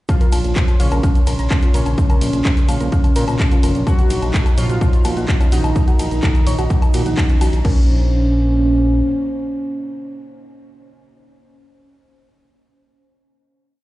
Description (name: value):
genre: melodic techno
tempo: 127 BPM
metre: 4/4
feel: straight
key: Bb minor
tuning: A4 = 445 Hz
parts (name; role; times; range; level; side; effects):
- resonant sweep polysynth; melody; 0.1-10.7 s; Db3 to Gb4; -22 LUFS; right 1 dB; chorus, sidechain pumping, digital delay
- dark analog pad; sustained chords; 0.1-10.7 s; Bb3 to C6; -28 LUFS; equal; chorus, sidechain pumping
- electronic kick drum; drums; 0.1-7.7 s; none; -15 LUFS; equal; overdrive
- punchy analog drum machine; drums; 0.1-7.7 s; crash cymbal, handclaps, hi-hat, ride cymbal, woodblock; -27 LUFS; left 2 dB; sidechain pumping on hats, sidechain pumping on perc, sidechain pumping on cymbals
- egg shaker; percussion; 0.1-7.6 s; none; -42 LUFS; right 4 dB; none
- soft round pluck; arpeggios; 0.2-7.9 s; Db4 to Bb6; -29 LUFS; left 1 dB; chorus, sidechain pumping, digital delay
- fat analog bass; bass; 0.3-9.0 s; F1 to Bb2; -18 LUFS; equal; sidechain pumping
room: light reverb, digital ambience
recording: played on a big sound system in a bare room, large studio reverb, nothing above 11.0 kHz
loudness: -14 LUFS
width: side -17 dB against mid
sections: 0.1-7.6 drop; 7.6-11.4 final chord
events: drop 0.1-7.6; band accent 7.2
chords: 0.1 Bbmadd9; 3.9 Gb6/Bb; 7.6 Bbmadd9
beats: | 0.09 0.56 1.03 1.51 | 1.98 2.45 2.92 3.40 | 3.87 4.34 4.81 5.29 | 5.76 6.23 6.70 7.17 | 7.65 8.12 8.59 9.06 | 9.54 10.01 10.48